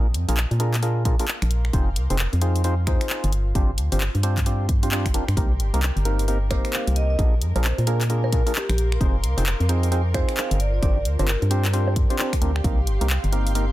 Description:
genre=UK garage, two-step garage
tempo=132 BPM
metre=4/4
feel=swing 62% on 16ths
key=C minor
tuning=A4 = 440 Hz
part: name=percussive organ stab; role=stabs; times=0.0-13.7 s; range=Bb3 to C5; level=-28 LUFS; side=equal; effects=chorus, tape echo
part: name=organ-like FM bass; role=bass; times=0.0-13.7 s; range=F1 to Bb2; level=-22 LUFS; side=equal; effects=none
part: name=granular cloud pad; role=texture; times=0.1-13.7 s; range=C4 to D6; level=-38 LUFS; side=equal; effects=built-in reverb, sidechain pumping
part: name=house drum kit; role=drums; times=0.1-13.7 s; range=bongos, finger snaps, handclaps, hi-hat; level=-28 LUFS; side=equal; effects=none
part: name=electronic kick drum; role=drums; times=1.1-12.8 s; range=none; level=-22 LUFS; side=equal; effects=none
part: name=muted studio violin section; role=sustained chords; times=5.4-13.7 s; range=Bb4 to F5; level=-38 LUFS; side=equal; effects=sidechain pumping
part: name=vibraphone with medium hard mallets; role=melody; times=6.5-11.4 s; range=G4 to F5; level=-30 LUFS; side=equal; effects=tape echo
room=little or no reverb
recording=none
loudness=-19 LUFS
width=side -16 dB against mid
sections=0.0-13.7 A section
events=fade-in on ambient pad 0.0-13.7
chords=0.0 Bb7; 1.7 Fm7; 3.3 G7sus4; 5.4 Cm7; 7.2 Bb7; 9.0 Fm7; 10.6 G7sus4; 12.6 Cm7

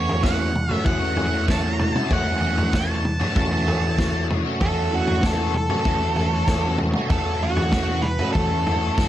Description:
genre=psychedelic rock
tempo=96 BPM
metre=4/4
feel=straight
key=unclear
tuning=A4 = 439 Hz
part: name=octave-fuzz lead guitar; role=melody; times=0.0-9.1 s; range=F#4 to A5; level=-26 LUFS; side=right 2 dB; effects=distortion, slapback echo
part: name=crunchy overdriven guitar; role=riff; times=0.0-9.1 s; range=E3 to F#4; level=-24 LUFS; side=equal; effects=rotary speaker
part: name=growling picked electric bass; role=bass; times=0.0-9.1 s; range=E2 to F#2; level=-25 LUFS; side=equal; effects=overdrive
part: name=vintage drum kit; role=drums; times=0.1-9.1 s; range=kick drum, snare drum, toms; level=-24 LUFS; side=equal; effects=none
room=light reverb, small room ambience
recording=none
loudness=-19 LUFS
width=side -12 dB against mid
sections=0.0-9.1 A section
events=none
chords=0.0 F#m/E

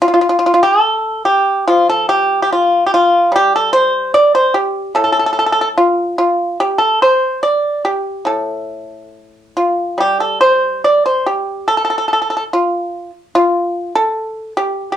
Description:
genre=chinese traditional, Chinese solo plucked strings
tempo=72 BPM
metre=4/4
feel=rubato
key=A jue mode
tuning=A4 = 440 Hz
part: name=pipa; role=solo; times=0.0-15.0 s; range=A2 to D5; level=-12 LUFS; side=equal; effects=cassette tape
room=light reverb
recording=home recording on cassette, small room reverb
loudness=-12 LUFS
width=side -10 dB against mid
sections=0.0-15.0 A section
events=none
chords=none

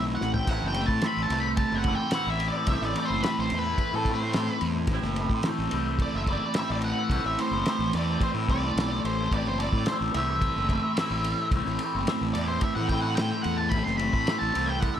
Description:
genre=psychedelic rock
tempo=109 BPM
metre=4/4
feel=straight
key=A dorian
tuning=A4 = 439 Hz
part: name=octave-fuzz lead guitar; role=melody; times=0.0-15.0 s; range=A4 to C6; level=-30 LUFS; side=equal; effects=distortion, analog delay
part: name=electric guitar with an envelope filter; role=riff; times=0.0-15.0 s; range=A2 to E4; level=-29 LUFS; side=equal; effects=phaser
part: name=fuzz fingered electric bass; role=bass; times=0.0-15.0 s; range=F#1 to A2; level=-31 LUFS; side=equal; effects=overdrive
part: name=cloth-damped thuddy drum kit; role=drums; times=0.2-15.0 s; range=kick drum, ride cymbal, snare drum, splash cymbal, toms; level=-31 LUFS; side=equal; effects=none
part: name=tanpura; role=drone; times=0.5-15.0 s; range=A2 to A3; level=-38 LUFS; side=right 1 dB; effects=none
room=light reverb, small room ambience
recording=none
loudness=-24 LUFS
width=side -9 dB against mid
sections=0.0-15.0 A section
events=lead electric guitar solo 0.0-15.0; drum fill 0.2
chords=0.0 Am

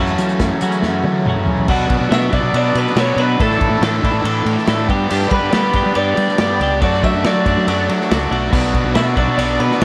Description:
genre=indie rock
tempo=140 BPM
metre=4/4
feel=straight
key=B minor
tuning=A4 = 440 Hz
part: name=overdriven electric guitar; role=riff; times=0.0-9.8 s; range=F#2 to G4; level=-24 LUFS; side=equal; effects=analog chorus
part: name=twelve-string electric guitar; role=riff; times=0.0-9.8 s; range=E3 to A4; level=-25 LUFS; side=equal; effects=none
part: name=fuzz fingered electric bass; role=bass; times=0.0-9.8 s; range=B1 to G3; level=-22 LUFS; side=equal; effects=overdrive
part: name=unplugged drum kit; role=drums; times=0.1-9.8 s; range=crash cymbal, hi-hat, kick drum, ride cymbal, snare drum, toms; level=-23 LUFS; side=equal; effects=none
part: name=combo organ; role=sustained chords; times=1.7-9.8 s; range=A4 to D6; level=-31 LUFS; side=equal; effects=none
part: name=overdriven semi-hollow guitar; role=melody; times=2.1-9.8 s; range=A4 to E5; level=-23 LUFS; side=equal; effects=spring reverb
part: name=glockenspiel with brass mallets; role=second line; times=2.1-9.8 s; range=A5 to E6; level=-31 LUFS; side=equal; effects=none
room=light reverb, studio reverb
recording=none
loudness=-16 LUFS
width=mono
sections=0.0-1.7 A section; 1.7-9.8 B section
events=drum fill 0.8-1.7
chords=0.0 F#m7; 1.7 Bm; 3.4 Asus4; 4.9 G; 6.8 D/F#; 8.5 Bm

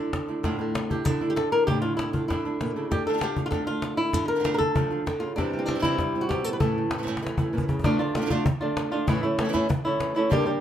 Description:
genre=flamenco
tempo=195 BPM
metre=4/4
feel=straight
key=A phrygian dominant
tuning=A4 = 444 Hz
part: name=flamenco guitar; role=melody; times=0.0-10.6 s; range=G2 to B4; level=-25 LUFS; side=equal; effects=none
part: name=flamenco guitar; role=stabs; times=0.0-10.6 s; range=G2 to G4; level=-32 LUFS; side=right 4 dB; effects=none
part: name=cajon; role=percussion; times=0.1-10.6 s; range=none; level=-28 LUFS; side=left 1 dB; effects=none
room=moderate studio reverb, RT60 0.7 s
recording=none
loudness=-23 LUFS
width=side -10 dB against mid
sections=0.0-7.8 A section; 7.8-10.6 B section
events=drum fill 7.1-7.8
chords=0.0 Asus4; 2.9 Dm; 5.4 C; 6.6 A; 7.8 Dm; 9.1 A

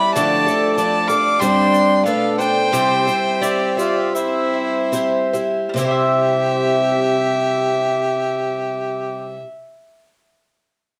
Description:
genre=acoustic folk duo or small band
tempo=70-97 BPM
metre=4/4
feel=straight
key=C major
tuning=A4 = 439 Hz
part: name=dark fiddle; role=melody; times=0.0-9.4 s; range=C5 to D6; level=-22 LUFS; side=equal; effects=none
part: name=warm harmonica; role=second line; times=0.0-9.4 s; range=E4 to G5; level=-25 LUFS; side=equal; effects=none
part: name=picked twelve-string acoustic guitar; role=accompaniment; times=0.0-9.5 s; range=G2 to C5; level=-24 LUFS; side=equal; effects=none
part: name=warm brass ensemble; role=sustained chords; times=0.0-9.4 s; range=B2 to E5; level=-30 LUFS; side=equal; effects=none
part: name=mandolin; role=arpeggios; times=0.0-9.6 s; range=G3 to E5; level=-27 LUFS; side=equal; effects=none
part: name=tube shaker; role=percussion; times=0.2-6.2 s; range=none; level=-36 LUFS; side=equal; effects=none
room=moderate studio reverb, RT60 0.8 s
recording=dark, warm production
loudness=-18 LUFS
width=mono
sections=0.0-5.8 A section; 5.8-9.2 B section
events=slowing down 0.2-5.8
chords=0.2 Dmadd9; 1.4 Gsus4; 2.1 Bm7b5; 2.7 C

